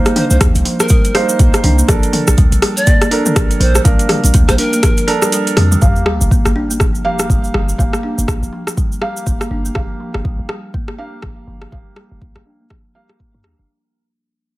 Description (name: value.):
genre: afro house.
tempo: 122 BPM.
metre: 4/4.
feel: swing 59% on 16ths.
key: G minor.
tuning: A4 = 440 Hz.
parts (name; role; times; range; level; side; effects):
kalimba; arpeggios; 0.0-13.7 s; F3 to D4; -21 LUFS; equal; sidechain pumping, low-pass filter, digital delay.
felt-muted upright piano; stabs; 0.0-13.7 s; Bb3 to F5; -21 LUFS; right 3 dB; vintage 12-bit sampler grit, sidechain pumping, low-pass filter, digital delay.
warm 808-style bass; bass; 0.0-13.7 s; G1 to G2; -16 LUFS; equal; sidechain pumping.
deep house drum kit; drums; 0.1-13.6 s; hi-hat, rim click, toms; -18 LUFS; equal; overdrive.
cabasa; percussion; 0.1-9.7 s; none; -23 LUFS; right 2 dB; none.
polished pan flute; melody; 0.2-5.1 s; Bb4 to D5; -21 LUFS; right 1 dB; digital delay.
electronic kick drum; drums; 0.4-13.3 s; none; -14 LUFS; equal; none.
sub drop; sound effects; 5.9-7.8 s; none; -23 LUFS; equal; none.
room: small room ambience.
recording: none.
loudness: -11 LUFS.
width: side -18 dB against mid.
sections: 0.0-5.8 A section; 5.8-13.7 B section.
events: drop 0.0-5.8; kick drops out 5.3-5.8; drum fill 5.6; fade-out 5.8-13.7; impact 5.8-7.8; filter sweep on kalimba 5.8-13.7.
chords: 0.0 Cm7; 1.9 Bbmaj7; 5.8 Gm7.